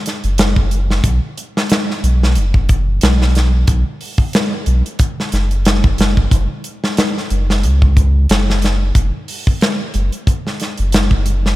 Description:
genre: trip hop.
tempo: 91 BPM.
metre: 4/4.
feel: swing 56% on 16ths.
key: unclear.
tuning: A4 = 438 Hz.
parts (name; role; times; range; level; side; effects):
modern studio drum kit; drums; 0.1-11.6 s; hi-hat, kick drum, snare drum; -15 LUFS; equal; none.
soft dub sub bass; bass; 0.2-11.6 s; F#1 to C#2; -14 LUFS; equal; tube saturation.
room: light reverb.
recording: none.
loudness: -13 LUFS.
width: side -17 dB against mid.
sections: 0.0-11.6 A section.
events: none.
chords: none.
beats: 0.38 | 1.04 1.70 2.36 3.02 | 3.68 4.33 5.00 5.65 | 6.31 6.97 7.63 8.29 | 8.95 9.61 10.27 10.93.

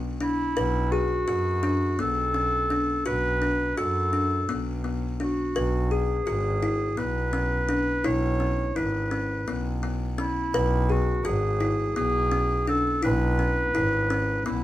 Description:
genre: contemporary instrumental, chamber music in an uneven meter.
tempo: 168 BPM (eighths).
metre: 7/8.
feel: straight.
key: unclear.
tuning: A4 = 435 Hz.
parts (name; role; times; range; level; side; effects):
buzzing kalimba; arpeggios; 0.0-14.6 s; B3 to B4; -28 LUFS; left 2 dB; none.
clear double bass; bass; 0.0-14.6 s; G#1 to F#2; -28 LUFS; right 1 dB; none.
warm clarinet; melody; 0.2-14.6 s; E4 to C#5; -27 LUFS; equal; none.
room: light reverb.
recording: minimal, uncompressed stereo recording.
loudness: -23 LUFS.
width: side -14 dB against mid.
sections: 0.0-14.6 A section.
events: none.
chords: 0.0 Bm7; 5.5 C#m7.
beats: 0.21 | 0.56 0.92 1.28 1.63 1.99 2.34 2.70 | 3.06 3.41 3.77 4.12 4.48 4.84 5.19 | 5.55 5.91 6.26 6.62 6.97 7.33 7.69 | 8.04 8.40 8.76 9.11 9.47 9.83 10.18 | 10.54 10.89 11.25 11.61 11.96 12.32 12.68 | 13.03 13.39 13.75 14.10 14.46.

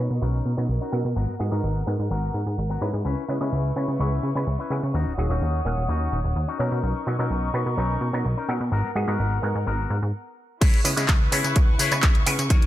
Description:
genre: filtered disco house.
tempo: 127 BPM.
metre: 4/4.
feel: straight.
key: C# dorian.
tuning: A4 = 440 Hz.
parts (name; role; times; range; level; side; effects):
auto-wah clav; accompaniment; 0.0-12.4 s; F#3 to C#5; -31 LUFS; equal; overdrive, phaser, vintage 12-bit sampler grit, sidechain pumping, low-pass filter.
warm studio string section; sustained chords; 0.0-12.7 s; E4 to D#6; -33 LUFS; equal; sidechain pumping, low-pass filter.
plucky analog bass; bass; 0.0-12.7 s; D#1 to C#3; -24 LUFS; equal; sidechain pumping, low-pass filter.
electric guitar with an envelope filter; riff; 0.2-12.7 s; B3 to D#5; -32 LUFS; left 6 dB; sidechain pumping, low-pass filter.
electronic kick drum; drums; 10.6-12.6 s; none; -18 LUFS; equal; overdrive.
house drum kit; drums; 10.6-12.7 s; crash cymbal, handclaps, hi-hat, tambourine; -25 LUFS; right 1 dB; overdrive, sidechain pumping on hats, sidechain pumping on cymbals, sidechain pumping on perc.
room: light reverb, digital ambience.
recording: none.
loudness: -21 LUFS.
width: side -14 dB against mid.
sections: 0.0-10.6 A section; 10.6-12.7 B section.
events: filter sweep 0.0-10.6; stop 10.1-10.6; drop 10.6-12.7.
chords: 0.0 Bmaj9; 1.2 G#m9; 3.1 C#m7; 4.9 D#m7; 6.6 Bmaj9; 8.7 G#m9; 10.6 C#m7.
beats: 0.22 0.69 | 1.17 1.64 2.11 2.58 | 3.06 3.53 4.00 4.47 | 4.95 5.42 5.89 6.36 | 6.83 7.31 7.78 8.25 | 8.72 9.20 9.67 10.14 | 10.62 11.09 11.56 12.03 | 12.51.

